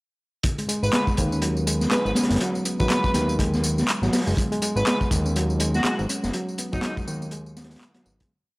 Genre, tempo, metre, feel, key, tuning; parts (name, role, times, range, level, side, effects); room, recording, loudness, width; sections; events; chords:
breakbeat, breaks; 122 BPM; 4/4; swing 58% on 16ths; G# minor; A4 = 440 Hz
crunchy breakbeat drum kit; drums; 0.4-8.3 s; hi-hat, kick drum, snare drum; -25 LUFS; equal
electronic tambourine and handclaps; drums; 0.4-8.3 s; -30 LUFS; equal; overdrive
reed electric piano; riff; 0.6-8.3 s; F#3 to C#4; -27 LUFS; equal; overdrive
airy dreamy lead; melody; 0.8-6.9 s; D#4 to B4; -29 LUFS; equal; chorus, small speaker sound, analog delay
fat analog bass; bass; 0.8-8.2 s; F#1 to D#2; -25 LUFS; equal
studio reverb; dry, gritty hardware recording; -21 LUFS; side -24 dB against mid
0.4-8.3 drop
drop 0.4-8.3; fade-out 5.7-8.3
0.4 G#m